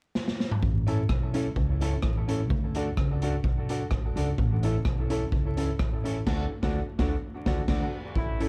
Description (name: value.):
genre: ska.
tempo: 128 BPM.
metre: 4/4.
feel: swing 54% on 8ths.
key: A major.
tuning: A4 = 439 Hz.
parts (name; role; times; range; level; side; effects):
raw garage drum kit; drums; 0.2-8.5 s; crash cymbal, hi-hat, kick drum, rim click, snare drum, toms; -31 LUFS; equal; none.
upright bass; bass; 0.6-8.5 s; A1 to D2; -32 LUFS; equal; none.
mellow electric guitar; accompaniment; 0.9-8.5 s; C#4 to D5; -38 LUFS; equal; tape echo.
clear upright piano; stabs; 0.9-8.5 s; C#4 to A4; -37 LUFS; equal; tape echo.
warm horn section; melody; 8.2-8.5 s; A3 to E4; -36 LUFS; equal; tape echo.
room: small room reverb.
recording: dark, warm production, vinyl crackle.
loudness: -28 LUFS.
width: mono.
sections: 0.6-8.1 A section.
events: drum fill 0.2-0.6; band accent 6.3-8.1.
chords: 0.0 N.C.; 0.6 A; 2.5 D; 4.4 A; 6.3 D.